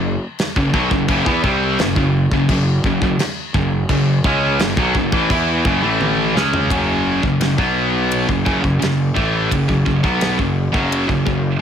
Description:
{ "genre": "heavy metal", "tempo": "85 BPM", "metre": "4/4", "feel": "straight", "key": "F# minor", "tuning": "A4 = 440 Hz", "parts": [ { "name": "high-gain distorted guitar", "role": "riff", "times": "0.0-11.5 s", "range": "F#2 to E4", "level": "-16 LUFS", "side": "equal", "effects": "distortion" }, { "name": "fuzz picked electric bass", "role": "bass", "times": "0.0-11.6 s", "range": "F#1 to E2", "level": "-22 LUFS", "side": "equal", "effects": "overdrive" }, { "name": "modern studio drum kit", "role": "drums", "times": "0.4-11.4 s", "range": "crash cymbal, kick drum, ride cymbal, snare drum, toms", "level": "-22 LUFS", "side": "equal", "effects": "none" } ], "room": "light reverb", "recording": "none", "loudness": "-15 LUFS", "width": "side -8 dB against mid", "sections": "0.0-6.7 A section; 6.7-11.6 B section", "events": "drum fill 6.0-6.7", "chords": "0.0 F#m; 6.7 F#5; 7.6 B5; 8.3 F#m" }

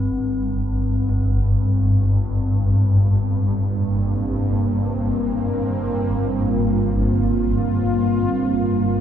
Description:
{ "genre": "dark ambient drone", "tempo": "free time", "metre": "none", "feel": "none", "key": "G minor", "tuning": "A4 = 445 Hz", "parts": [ { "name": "bronze singing bowl", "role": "arpeggios", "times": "0.0-5.8 s", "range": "G2", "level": "-27 LUFS", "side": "left 1 dB", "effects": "tape echo" }, { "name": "swarming drone", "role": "drone", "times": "0.0-9.0 s", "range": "G1 to G2", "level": "-20 LUFS", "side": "equal", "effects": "built-in reverb" }, { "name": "sweeping resonant pad", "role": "sustained chords", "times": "2.1-9.0 s", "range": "G2 to F4", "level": "-21 LUFS", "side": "right 1 dB", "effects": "chorus" } ], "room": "wet huge ambient reverb, RT60 8.0 s", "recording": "none", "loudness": "-18 LUFS", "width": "side -10 dB against mid", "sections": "0.0-9.0 A section", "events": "fade-out on singing bowl 0.0-9.0; filter sweep on synth drone 0.0-9.0", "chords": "0.0 Gm7" }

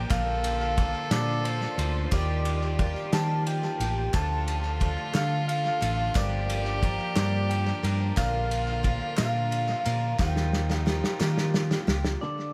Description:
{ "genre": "indie folk with a building arrangement", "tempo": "60 BPM (dotted quarters)", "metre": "6/8", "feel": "straight", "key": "unclear", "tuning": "A4 = 442 Hz", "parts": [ { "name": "electric guitar through a small old amp", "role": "melody", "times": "0.0-12.5 s", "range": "C5 to A5", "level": "-34 LUFS", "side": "equal", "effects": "harmonic tremolo, tape echo" }, { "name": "warm fiddle", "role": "second line", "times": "0.0-11.9 s", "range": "Eb4 to A4", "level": "-38 LUFS", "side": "equal", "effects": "none" }, { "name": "picked twelve-string acoustic guitar", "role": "accompaniment", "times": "0.0-12.2 s", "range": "G2 to Bb4", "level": "-37 LUFS", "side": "equal", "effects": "tape echo" }, { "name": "warm chamber string section", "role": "sustained chords", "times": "0.0-12.2 s", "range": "D3 to G4", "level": "-43 LUFS", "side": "equal", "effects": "none" }, { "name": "hollow-body short-scale fingered electric bass", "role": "bass", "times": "0.0-12.2 s", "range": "G1 to Eb3", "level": "-31 LUFS", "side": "equal", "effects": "none" }, { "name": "loose indie drum kit", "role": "drums", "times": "0.1-12.2 s", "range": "kick drum, ride cymbal, snare drum", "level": "-33 LUFS", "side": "equal", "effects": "tape echo" }, { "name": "group handclap", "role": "percussion", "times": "0.1-12.0 s", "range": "none", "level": "-47 LUFS", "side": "equal", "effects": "none" }, { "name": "tambourine", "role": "percussion", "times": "0.1-12.1 s", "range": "none", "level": "-51 LUFS", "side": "equal", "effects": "none" }, { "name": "fingerpicked acoustic archtop guitar", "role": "accompaniment", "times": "12.2-12.5 s", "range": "D3 to A4", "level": "-36 LUFS", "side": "equal", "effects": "tape echo" } ], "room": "light reverb", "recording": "echo-heavy mix", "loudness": "-27 LUFS", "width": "mono", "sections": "0.0-12.2 A section", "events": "drum fill 10.2-12.2", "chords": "0.1 Bb; 2.1 Ebadd9; 4.1 Dm; 6.2 Gm7; 8.2 Bb; 10.2 Ebadd9" }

